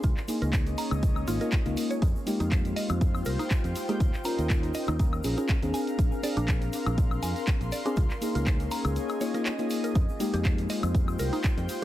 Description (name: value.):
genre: deep house.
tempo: 121 BPM.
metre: 4/4.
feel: swing 54% on 16ths.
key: F minor.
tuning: A4 = 440 Hz.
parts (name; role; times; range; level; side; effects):
mallet-like synth pluck; arpeggios; 0.0-11.5 s; D4 to Bb5; -38 LUFS; right 2 dB; chorus, cassette tape, sidechain pumping, tape echo.
mellow FM electric piano; stabs; 0.0-11.8 s; Ab3 to Bb4; -32 LUFS; left 1 dB; chorus, vintage 12-bit sampler grit, sidechain pumping, tape echo.
fingered electric bass; bass; 0.0-11.7 s; Ab1 to F2; -30 LUFS; equal; sidechain pumping.
electronic kick drum; drums; 0.0-11.5 s; none; -26 LUFS; equal; vintage 12-bit sampler grit.
punchy analog drum machine; drums; 0.0-11.8 s; handclaps, hi-hat, woodblock; -36 LUFS; left 1 dB; vintage 12-bit sampler grit.
egg shaker; percussion; 0.0-11.8 s; none; -47 LUFS; left 2 dB; none.
airy breathy pad; texture; 0.0-11.8 s; Ab3 to C6; -36 LUFS; left 1 dB; chorus, sidechain pumping.
room: digital ambience.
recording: dense, heavily limited modern master.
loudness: -25 LUFS.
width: side -14 dB against mid.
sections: 0.0-11.8 A section.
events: none.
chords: 0.0 Db6; 2.0 Fm11; 4.0 Eb7sus4; 5.7 Bb7; 8.0 Db6; 10.0 Fm11.